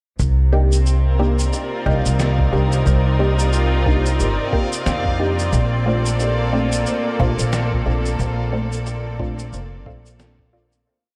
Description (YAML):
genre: ambient dub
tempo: 90 BPM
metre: 4/4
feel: swing 58% on 16ths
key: C dorian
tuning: A4 = 444 Hz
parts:
  - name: clear symphonic string section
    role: sustained chords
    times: 0.2-10.9 s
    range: Bb2 to D5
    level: -27 LUFS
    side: equal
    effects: none
  - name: upright bass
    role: bass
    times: 0.2-10.8 s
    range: F1 to F2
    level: -21 LUFS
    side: equal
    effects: none
  - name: electronic cabasa and snare drum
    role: drums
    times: 0.2-10.8 s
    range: none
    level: -32 LUFS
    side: equal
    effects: studio reverb, dub echo
  - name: electronic kick drum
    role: drums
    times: 0.2-10.5 s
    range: none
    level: -24 LUFS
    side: equal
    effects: studio reverb
  - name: backwards swelling texture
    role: texture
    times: 1.0-10.9 s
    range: F4 to F5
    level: -33 LUFS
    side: equal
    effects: built-in reverb
  - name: filtered dub chord stab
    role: stabs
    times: 0.5-10.8 s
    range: A3 to G4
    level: -28 LUFS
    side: equal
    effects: phaser, analog chorus, dub echo
room: moderate plate reverb, RT60 3.9 s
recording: dreamy mix soaked in reverb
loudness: -19 LUFS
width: mono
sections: 0.2-10.9 groove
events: fade-out 7.3-10.9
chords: 0.2 Cm7; 5.5 Bbmaj9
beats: | 0.20 0.86 1.53 2.20 | 2.86 3.53 4.20 4.86 | 5.53 6.20 6.86 7.53 | 8.20 8.86 9.53 10.20